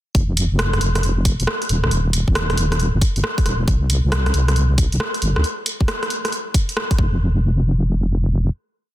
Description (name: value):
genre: UK garage, two-step garage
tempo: 136 BPM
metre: 4/4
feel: swing 65% on 16ths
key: unclear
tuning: A4 = 441 Hz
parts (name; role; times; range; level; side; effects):
- deep soft wobble bass; bass; 0.1-8.5 s; Eb1 to D2; -17 LUFS; equal; chorus
- electronic kick drum; drums; 0.1-7.1 s; none; -17 LUFS; equal; none
- punchy analog drum machine; drums; 0.1-7.0 s; hi-hat, rim click; -22 LUFS; equal; overdrive
room: little or no reverb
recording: dense, heavily limited modern master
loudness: -17 LUFS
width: side -14 dB against mid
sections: 0.1-7.2 drop; 7.2-8.9 final hit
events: drop 0.1-7.2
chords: none